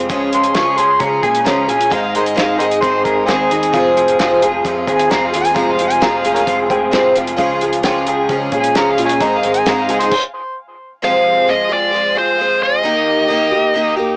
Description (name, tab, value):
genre	folk rock and heartland rock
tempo	132 BPM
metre	4/4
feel	straight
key	F minor, F dorian from 11.0 s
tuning	A4 = 439 Hz
part	picked twelve-string acoustic guitar	accompaniment	0.0-14.2 s	F2 to Ab4	-20 LUFS	equal	cassette tape
part	electric guitar through a small old amp	riff	0.0-10.1 s	Ab2 to Ab4	-21 LUFS	equal	ensemble chorus, cassette tape
part	picked electric bass	bass	0.0-10.1 s	F1 to Db3	-34 LUFS	equal	none
part	cloth-damped thuddy drum kit	drums	0.1-10.2 s	crash cymbal, hi-hat, kick drum, snare drum	-24 LUFS	equal	cassette tape
part	overdriven harmonica	second line	0.3-10.2 s	Db4 to Db6	-19 LUFS	equal	cassette tape, analog delay
part	warm upright piano	accompaniment	3.7-10.1 s	Ab4 to G5	-26 LUFS	equal	none
part	mellow tonewheel organ	sustained chords	3.7-14.2 s	C4 to Eb6	-29 LUFS	equal	none
part	dark smooth lead guitar	melody	11.0-13.9 s	C5 to F5	-17 LUFS	equal	overdrive, cassette tape
room	moderate booth ambience, RT60 0.2 s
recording	home recording on cassette, small speaker sound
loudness	-15 LUFS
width	mono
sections	0.0-11.0 A section; 11.0-14.2 B section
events	harmonica solo 0.0-11.0; stop 10.1-11.0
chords	0.1 Db; 1.9 Ab; 3.7 Fm; 7.4 Db; 9.2 Ab; 10.1 N.C.; 11.0 Fm; 12.8 Eb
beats	| 0.10 0.55 1.01 1.46 | 1.92 2.37 2.83 3.28 | 3.74 4.20 4.65 5.11 | 5.56 6.02 6.48 6.93 | 7.39 7.84 8.30 8.76 | 9.21 9.67 10.12 10.58 | 11.03 11.49 11.94 12.39 | 12.85 13.30 13.75